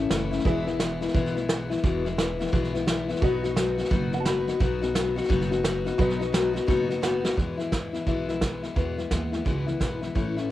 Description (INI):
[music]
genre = honky-tonk and classic country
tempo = 173 BPM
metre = 4/4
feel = swing 63% on 8ths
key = E major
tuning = A4 = 440 Hz
[part]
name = honky-tonk upright piano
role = accompaniment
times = 0.0-7.4 s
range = F#4 to B5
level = -35 LUFS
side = right 7 dB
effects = none
[part]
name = picked steel-string acoustic guitar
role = accompaniment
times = 0.0-10.5 s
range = E2 to F#4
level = -26 LUFS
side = left 4 dB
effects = none
[part]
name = upright bass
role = bass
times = 0.0-10.5 s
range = E1 to E2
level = -32 LUFS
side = right 2 dB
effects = none
[part]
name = soft brush drum kit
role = drums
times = 0.1-10.4 s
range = hi-hat, kick drum, snare drum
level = -28 LUFS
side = right 2 dB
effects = cassette tape
[sound]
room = light reverb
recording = home recording on cassette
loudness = -23 LUFS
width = side -14 dB against mid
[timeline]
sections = 0.0-7.4 A section; 7.4-10.5 B section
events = honky-tonk piano fill 3.9-4.6; drum fill 7.2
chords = 0.5 E; 3.2 B; 7.4 E